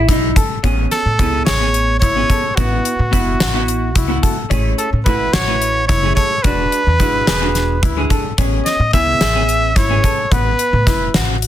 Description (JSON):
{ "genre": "progressive instrumental, band music in an uneven meter", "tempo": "217 BPM (eighths)", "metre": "7/8", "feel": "straight", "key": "A major", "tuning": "A4 = 438 Hz", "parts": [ { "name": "vintage hollow-body jazz guitar", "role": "accompaniment", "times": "0.0-10.2 s", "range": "G#3 to B4", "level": "-22 LUFS", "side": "right 1 dB", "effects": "double-tracked left and right, plate reverb" }, { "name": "upright bass", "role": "bass", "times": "0.0-11.5 s", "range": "E1 to A2", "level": "-19 LUFS", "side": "equal", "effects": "none" }, { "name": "warm baby grand piano", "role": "arpeggios", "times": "0.1-11.5 s", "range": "B3 to A4", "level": "-25 LUFS", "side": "left 6 dB", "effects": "plate reverb" }, { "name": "gated 80s drum kit", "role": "drums", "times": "0.1-11.5 s", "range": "hi-hat, kick drum, snare drum", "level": "-17 LUFS", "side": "equal", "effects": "soft clipping on kick" }, { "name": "clear trumpet", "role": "melody", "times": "0.9-11.1 s", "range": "F#4 to E5", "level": "-18 LUFS", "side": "equal", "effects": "plate reverb" } ], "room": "light reverb", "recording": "dense, heavily limited modern master", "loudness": "-13 LUFS", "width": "side -12 dB against mid", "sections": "0.6-11.5 A section", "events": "none", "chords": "0.0 C#m7/A (rootless); 0.6 Amaj7; 2.6 Esus2; 4.5 F#m7/A; 6.4 E7; 8.4 Amaj7; 10.3 Esus2", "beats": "0.09 0.36 | 0.64 0.92 1.19 1.47 1.75 2.02 2.30 | 2.58 2.85 3.13 3.40 3.68 3.96 4.23 | 4.51 4.79 5.06 5.34 5.62 5.89 6.17 | 6.45 6.72 7.00 7.28 7.55 7.83 8.11 | 8.38 8.66 8.93 9.21 9.49 9.76 10.04 | 10.32 10.59 10.87 11.15 11.42" }